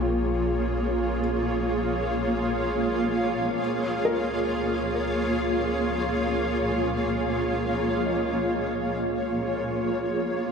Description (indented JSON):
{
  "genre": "ambient",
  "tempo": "free time",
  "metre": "none",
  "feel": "none",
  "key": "unclear",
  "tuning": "A4 = 441 Hz",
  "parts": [
    { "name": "granular cloud pad", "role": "sustained chords", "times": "0.0-10.5 s", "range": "Bb3 to F5", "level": "-24 LUFS", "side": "equal", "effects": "built-in reverb" },
    { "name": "felt-muted upright piano", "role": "arpeggios", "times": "0.0-10.5 s", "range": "F4 to Eb5", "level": "-33 LUFS", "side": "left 3 dB", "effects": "ping-pong delay" },
    { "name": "warm sub bass", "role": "bass", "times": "0.0-10.5 s", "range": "Bb1 to Db2", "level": "-35 LUFS", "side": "equal", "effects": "none" }
  ],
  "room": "wet cathedral reverb, RT60 4.9 s",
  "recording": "none",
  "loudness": "-24 LUFS",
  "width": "side -6 dB against mid",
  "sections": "0.0-10.5 A section",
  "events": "fade-out on felt piano 0.0-10.5; fade-out on sub bass 0.0-10.5",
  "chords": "0.0 Bbm7; 3.6 Db6"
}